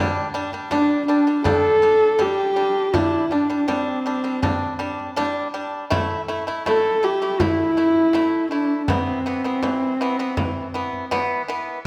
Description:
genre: mongolian traditional, Mongolian folk.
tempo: 81 BPM.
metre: 4/4.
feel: straight.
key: G zhi mode.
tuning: A4 = 438 Hz.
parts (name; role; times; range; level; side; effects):
pipa; arpeggios; 0.0-11.8 s; E3 to E4; -27 LUFS; equal; none.
frame drum; percussion; 0.5-11.3 s; none; -30 LUFS; equal; none.
dark horsehead fiddle; melody; 0.7-11.1 s; C4 to A4; -22 LUFS; equal; none.
room: moderate scoring stage reverb, RT60 1.9 s.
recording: none.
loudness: -21 LUFS.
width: mono.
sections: 0.0-11.9 A section.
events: none.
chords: 0.0 G5; 5.9 A5; 8.9 E5.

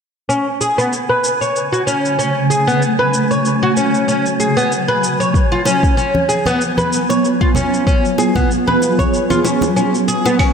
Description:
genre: organic downtempo.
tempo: 95 BPM.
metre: 4/4.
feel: swing 55% on 16ths.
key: unclear.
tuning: A4 = 440 Hz.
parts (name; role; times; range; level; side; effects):
granular cloud pad; sustained chords; 1.6-10.5 s; C#3 to G#4; -18 LUFS; right 1 dB; built-in reverb, sidechain pumping.
oud; arpeggios; 0.3-10.5 s; B3 to C#5; -16 LUFS; equal; low-pass filter, ping-pong delay, slapback echo.
electronic shaker, hi-hat and claves; drums; 0.3-10.5 s; none; -25 LUFS; right 1 dB; none.
wind-like tuned noise texture; texture; 0.7-10.4 s; G#5; -26 LUFS; right 2 dB; built-in reverb.
electronic kick drum; drums; 5.3-10.5 s; none; -15 LUFS; equal; none.
bongos and congas; percussion; 5.7-10.4 s; none; -23 LUFS; right 1 dB; none.
room: wet lush hall reverb, RT60 1.7 s, digital ambience.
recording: big arena sound.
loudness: -13 LUFS.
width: side -6 dB against mid.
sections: 0.3-10.4 A section.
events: filter sweep on ambient pad 0.3-10.4; kick drops out 9.8-10.4.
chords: 0.3 Amaj13/C#; 5.3 C#7.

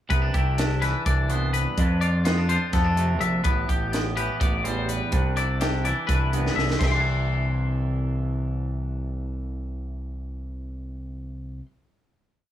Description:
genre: math rock and midwest emo.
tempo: 251 BPM (eighths).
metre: 7/8.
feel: straight.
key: C major.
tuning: A4 = 440 Hz.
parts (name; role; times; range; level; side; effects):
twangy electric guitar; accompaniment; 0.1-11.7 s; E2 to G4; -30 LUFS; right 4 dB; spring reverb.
twangy electric guitar; arpeggios; 0.1-11.7 s; F4 to C6; -28 LUFS; left 8 dB; lush chorus.
growling fingered electric bass; bass; 0.1-11.6 s; A1 to F2; -26 LUFS; equal; overdrive.
crisp fusion drum kit; drums; 0.1-6.9 s; crash cymbal, hi-hat, kick drum, snare drum; -26 LUFS; equal; none.
room: light reverb.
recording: small room ambience.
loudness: -22 LUFS.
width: side -11 dB against mid.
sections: 0.1-6.8 A section; 6.8-10.1 final chord.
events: drum fill 6.4-6.8.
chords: 0.1 Cmaj9; 1.8 F6; 3.4 Am11; 5.1 Cmaj9; 6.8 Cadd9.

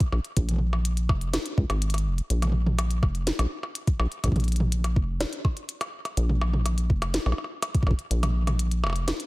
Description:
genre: IDM.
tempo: 124 BPM.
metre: 4/4.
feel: straight.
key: unclear.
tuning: A4 = 440 Hz.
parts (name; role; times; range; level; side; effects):
electronic kick drum; drums; 0.0-8.0 s; none; -23 LUFS; equal; overdrive.
glitchy drum kit; drums; 0.0-9.3 s; hi-hat, percussion blips, snare drum, toms; -30 LUFS; equal; overdrive, tape echo.
deep acid bass; bass; 0.1-9.1 s; F1 to Db2; -24 LUFS; equal; none.
room: little or no reverb.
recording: echo-heavy mix.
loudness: -23 LUFS.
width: side -20 dB against mid.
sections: 0.0-9.3 A section.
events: kick drops out 8.1-9.3.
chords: none.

